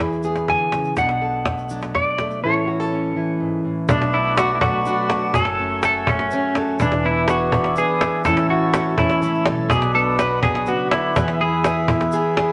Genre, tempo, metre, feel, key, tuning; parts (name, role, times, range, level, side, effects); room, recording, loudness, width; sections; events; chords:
acoustic folk duo or small band; 124 BPM; 3/4; straight; B dorian; A4 = 441 Hz
clean electric guitar; melody; 0.0-11.9 s; C#4 to B5; -24 LUFS; equal; harmonic tremolo
nylon-string guitar; accompaniment; 0.0-12.5 s; F#2 to A4; -26 LUFS; equal
upright bass; bass; 0.0-12.1 s; E1 to E2; -32 LUFS; equal
egg shaker; percussion; 0.1-12.4 s; -50 LUFS; equal
cajon; percussion; 0.4-12.5 s; -25 LUFS; equal
hand-pumped harmonium; sustained chords; 3.9-12.5 s; E4 to B5; -27 LUFS; equal
picked acoustic archtop guitar; arpeggios; 3.9-12.5 s; E3 to A4; -30 LUFS; equal
moderate studio reverb, RT60 0.8 s; -20 LUFS; mono
0.0-3.9 A section; 3.9-12.5 B section
0.0 E; 1.0 Bm7; 2.4 A; 3.9 Bm7; 5.3 F#madd9; 6.8 E7; 8.3 A; 9.7 Bm; 11.2 E